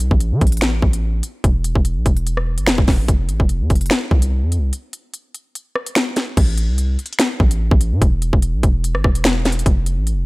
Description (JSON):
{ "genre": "hip hop, drill", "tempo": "146 BPM", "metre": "4/4", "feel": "half-time", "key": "A harmonic minor", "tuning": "A4 = 440 Hz", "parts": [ { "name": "long sustained 808-style bass", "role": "bass", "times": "0.0-10.3 s", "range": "E1 to E3", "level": "-18 LUFS", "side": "equal", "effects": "none" }, { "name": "drill drum kit", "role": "drums", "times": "0.0-10.2 s", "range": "crash cymbal, finger snaps, hi-hat, kick drum, rim click, snare drum", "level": "-16 LUFS", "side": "equal", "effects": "none" } ], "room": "digital ambience", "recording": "none", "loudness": "-15 LUFS", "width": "side -23 dB against mid", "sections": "0.0-6.4 A section; 6.4-10.3 B section", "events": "break 4.7-6.4", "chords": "none" }